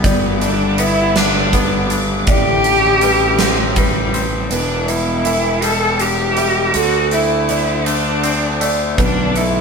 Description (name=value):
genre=post-rock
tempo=54 BPM (dotted quarters)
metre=6/8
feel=straight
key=unclear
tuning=A4 = 440 Hz
part: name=rich cello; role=melody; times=0.0-9.6 s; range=B3 to A4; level=-17 LUFS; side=left 1 dB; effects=none
part: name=warm studio string section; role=sustained chords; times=0.0-9.6 s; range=G4 to D6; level=-26 LUFS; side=left 1 dB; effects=none
part: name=felt-muted upright piano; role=arpeggios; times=0.0-9.6 s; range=A4 to E5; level=-24 LUFS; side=right 4 dB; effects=none
part: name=twangy electric guitar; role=arpeggios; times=0.0-9.6 s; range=E2 to D4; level=-24 LUFS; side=left 4 dB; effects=tremolo
part: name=fuzz fingered electric bass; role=bass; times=0.0-9.6 s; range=E1 to D2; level=-20 LUFS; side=equal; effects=overdrive
part: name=huge arena drum kit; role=drums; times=0.0-9.5 s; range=hi-hat, kick drum, snare drum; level=-20 LUFS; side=right 1 dB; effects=none
room=moderate stone room reverb, RT60 1.1 s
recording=band playing live in one room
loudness=-13 LUFS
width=side -5 dB against mid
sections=0.0-4.5 A section; 4.5-9.6 B section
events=none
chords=0.0 Gmaj7; 2.3 Am11; 4.5 Em7; 6.7 D7; 9.0 Bm7